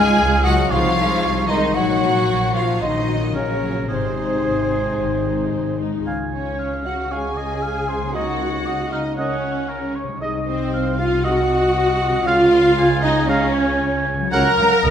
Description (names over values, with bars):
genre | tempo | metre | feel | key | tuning
classical, dramatic, fast romantic movement for symphony orchestra | 116 BPM | 4/4 | straight | Db major | A4 = 440 Hz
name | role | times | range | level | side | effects
rich studio violin section | melody | 0.0-14.9 s | C5 to Bb5 | -29 LUFS | left 2 dB | none
mellow silver concert flute | second line | 0.0-14.9 s | C5 to Bb5 | -25 LUFS | left 1 dB | none
rich symphonic violin section | second line | 0.0-14.9 s | C4 to Bb5 | -29 LUFS | equal | none
warm oboe | second line | 0.0-14.9 s | Ab4 to Bb5 | -27 LUFS | right 1 dB | none
warm symphonic viola section | accompaniment | 0.0-14.9 s | Gb3 to Bb4 | -23 LUFS | right 1 dB | none
dark French horn section | sustained chords | 0.0-14.5 s | C3 to Eb4 | -27 LUFS | left 4 dB | none
concert harp | arpeggios | 0.0-14.9 s | Ab2 to Eb5 | -28 LUFS | left 8 dB | none
rich symphonic double bass section | bass | 0.0-14.9 s | Ab1 to Db2 | -25 LUFS | right 2 dB | none
warm symphonic cello section | bass | 0.0-14.9 s | C3 to Ab3 | -29 LUFS | right 2 dB | none
mellow trumpet | stabs | 6.1-14.5 s | Eb5 to Gb5 | -26 LUFS | right 2 dB | none
warm clarinet | second line | 6.3-14.9 s | C4 to Bb4 | -25 LUFS | equal | none
room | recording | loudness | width
wet recital hall reverb, RT60 1.4 s | none | -17 LUFS | side -8 dB against mid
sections
0.0-6.1 A section; 6.1-14.9 B section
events
none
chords
0.0 Db; 0.7 Ab/C; 1.8 Gb/Bb; 3.9 Ab; 6.1 Db; 8.2 Ebm7/Db; 10.2 Ab7/C; 12.3 Db; 14.3 Gb/Db